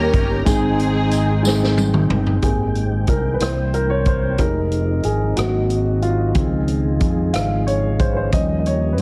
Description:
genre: slow gospel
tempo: 61 BPM (dotted quarters)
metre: 6/8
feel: straight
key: Ab major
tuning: A4 = 440 Hz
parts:
  - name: warm studio string section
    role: melody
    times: 0.0-1.7 s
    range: C4 to Bb4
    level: -24 LUFS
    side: equal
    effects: none
  - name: dark upright piano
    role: accompaniment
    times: 0.0-9.0 s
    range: Ab2 to F5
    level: -24 LUFS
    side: equal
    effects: none
  - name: mellow tonewheel organ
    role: sustained chords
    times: 0.0-9.0 s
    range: Db3 to G5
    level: -30 LUFS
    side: equal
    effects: slow rotary speaker, chorus vibrato
  - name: fingered electric bass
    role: bass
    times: 0.0-9.0 s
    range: F1 to G2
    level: -23 LUFS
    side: equal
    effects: none
  - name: swinging big-band drum kit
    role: drums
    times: 0.1-9.0 s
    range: hi-hat, kick drum, rim click, snare drum, toms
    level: -24 LUFS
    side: equal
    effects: none
  - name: tambourine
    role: percussion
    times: 0.5-2.1 s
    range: none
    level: -33 LUFS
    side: equal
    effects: none
  - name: mellow French horn section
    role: sustained chords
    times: 2.4-9.0 s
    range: Db3 to Eb5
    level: -38 LUFS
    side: equal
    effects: none
room: light reverb, small room ambience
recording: heavily compressed radio sound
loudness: -19 LUFS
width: mono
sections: 0.0-2.4 A section; 2.4-9.0 B section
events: drum fill 1.4-2.4; upright piano solo 2.4-9.0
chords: 0.5 Abmaj7; 3.4 C7; 4.4 Fm7; 5.4 Ab7; 6.4 Dbmaj7; 8.3 Eb7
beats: | 0.47 1.45 | 2.43 3.41 | 4.39 5.38 | 6.36 7.34 | 8.33

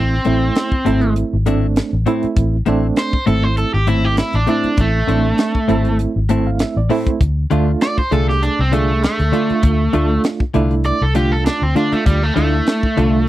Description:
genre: straight-eighth soul blues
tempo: 99 BPM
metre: 4/4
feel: swing 54% on 16ths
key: A harmonic minor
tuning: A4 = 440 Hz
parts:
  - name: crunchy overdriven guitar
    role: melody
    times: 0.0-13.3 s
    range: G3 to D5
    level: -19 LUFS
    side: right 1 dB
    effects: none
  - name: barky reed electric piano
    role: accompaniment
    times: 0.0-13.3 s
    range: A3 to A5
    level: -20 LUFS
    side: right 5 dB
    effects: fast tremolo
  - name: vintage muted fingered electric bass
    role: bass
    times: 0.0-13.3 s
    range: G#1 to D2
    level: -17 LUFS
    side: equal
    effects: none
  - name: tight funk drum kit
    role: drums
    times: 0.2-13.1 s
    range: hi-hat, kick drum, snare drum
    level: -18 LUFS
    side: equal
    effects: none
  - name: direct-recorded clean electric guitar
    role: stabs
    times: 0.3-13.2 s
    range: A2 to F4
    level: -20 LUFS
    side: left 6 dB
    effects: none
room: little or no reverb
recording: dry, close 1970s-style studio recording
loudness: -14 LUFS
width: side -14 dB against mid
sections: 0.0-13.3 A section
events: overdriven electric guitar solo 0.0-13.3; reed electric piano fill 6.0-7.2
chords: 0.0 Am; 7.2 Dm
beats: 0.56 1.16 1.76 | 2.37 2.97 3.58 4.18 | 4.79 5.39 6.00 6.60 | 7.21 7.82 8.42 9.03 | 9.64 10.24 10.85 11.46 | 12.06 12.67 13.28

